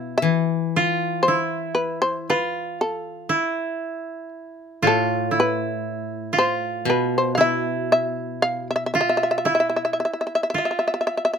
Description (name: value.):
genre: japanese traditional, Japanese chamber music.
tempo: 58 BPM.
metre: 4/4.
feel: rubato.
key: E miyako bushi.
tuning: A4 = 440 Hz.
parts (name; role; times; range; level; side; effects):
shamisen; melody; 0.0-11.4 s; A4 to F5; -21 LUFS; left 1 dB; none.
koto; second line; 0.0-11.4 s; E4 to F4; -25 LUFS; right 3 dB; none.
koto; accompaniment; 0.0-10.0 s; A2 to E3; -26 LUFS; left 3 dB; none.
room: light reverb.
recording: close, detailed microphones.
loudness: -20 LUFS.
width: side -7 dB against mid.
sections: 0.0-11.4 A section.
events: none.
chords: none.